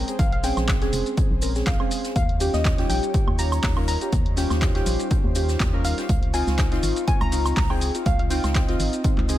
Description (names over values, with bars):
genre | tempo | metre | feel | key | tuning
deep house | 122 BPM | 4/4 | swing 54% on 16ths | unclear | A4 = 440 Hz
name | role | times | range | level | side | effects
soft round pluck | melody | 0.0-9.2 s | Eb5 to Bb5 | -31 LUFS | left 2 dB | chorus, ping-pong delay
airy breathy pad | sustained chords | 0.0-9.4 s | G3 to Db6 | -34 LUFS | left 1 dB | chorus, vintage 12-bit sampler grit, sidechain pumping
warm analog keys | stabs | 0.0-9.4 s | C4 to Bb4 | -28 LUFS | equal | chorus, vintage 12-bit sampler grit, sidechain pumping, dub echo
organ-like FM bass | bass | 0.0-9.4 s | F1 to Eb2 | -25 LUFS | equal | sidechain pumping
open jazz drum kit | drums | 0.1-9.4 s | hi-hat, snare drum | -40 LUFS | left 2 dB | sidechain pumping on hats, high-pass filter on hats, high-pass filter on snare, high-pass filter on room
punchy analog drum machine | drums | 0.1-9.4 s | handclaps, hi-hat, shaker, woodblock | -30 LUFS | right 1 dB | none
electronic kick drum | drums | 0.2-9.2 s | none | -23 LUFS | equal | none
room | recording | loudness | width
little or no reverb | none | -20 LUFS | side -14 dB against mid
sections
0.0-9.4 A section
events
none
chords
0.0 Bbm9; 2.2 Eb7; 6.1 Dbmaj7